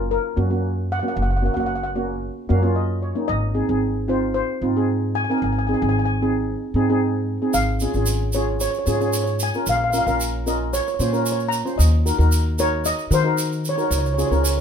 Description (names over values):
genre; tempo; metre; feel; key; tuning
calypso; 113 BPM; 4/4; straight; Db major; A4 = 440 Hz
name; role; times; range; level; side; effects
steel pan; melody; 0.0-14.6 s; Bb4 to Bb5; -24 LUFS; left 1 dB; none
steel pan; accompaniment; 0.0-14.6 s; Bb3 to F5; -23 LUFS; right 1 dB; none
upright bass; bass; 0.0-14.6 s; Gb1 to Eb3; -22 LUFS; equal; none
egg shaker; percussion; 7.5-14.6 s; none; -29 LUFS; right 4 dB; none
room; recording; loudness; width
light reverb; minimal, uncompressed stereo recording; -19 LUFS; side -7 dB against mid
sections
0.0-14.6 A section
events
steel pan fill 2.2-3.3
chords
0.0 Gb; 3.3 Ab; 7.5 Db/Ab; 9.7 Bbm; 11.8 Ebm; 13.9 Db6